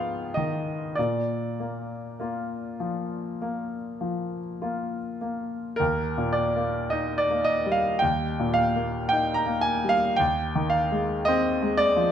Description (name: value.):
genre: classical, romantic nocturne for solo piano.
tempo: 48-58 BPM.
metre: 4/4.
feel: rubato.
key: Eb major.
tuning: A4 = 440 Hz.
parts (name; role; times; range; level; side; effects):
clear grand piano; solo; 0.0-12.1 s; Eb2 to Bb5; -24 LUFS; equal; none.
room: moderate recital hall reverb, RT60 1.5 s.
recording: close, detailed microphones.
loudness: -24 LUFS.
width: side -9 dB against mid.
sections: 0.0-5.8 A section; 5.8-12.1 B section.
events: none.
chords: 0.0 Fm7b5/Ab; 1.0 Bb; 5.8 Eb; 10.2 Fm7/Eb.